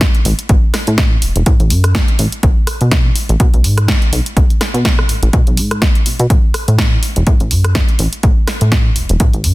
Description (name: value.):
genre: filtered disco house.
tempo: 124 BPM.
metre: 4/4.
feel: swing 56% on 16ths.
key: unclear.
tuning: A4 = 440 Hz.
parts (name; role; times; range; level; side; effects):
plucky analog bass; bass; 0.0-9.5 s; E1 to B2; -14 LUFS; equal; sidechain pumping.
electronic kick drum; drums; 0.0-9.3 s; none; -13 LUFS; equal; studio ambience.
punchy analog drum machine; drums; 0.0-9.5 s; hi-hat, rim click, snare drum; -18 LUFS; equal; sidechain pumping on hats, studio ambience, sidechain pumping on cymbals.
room: digital ambience.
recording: dense, heavily limited modern master.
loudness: -10 LUFS.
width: side -19 dB against mid.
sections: 0.0-9.5 A section.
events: none.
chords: none.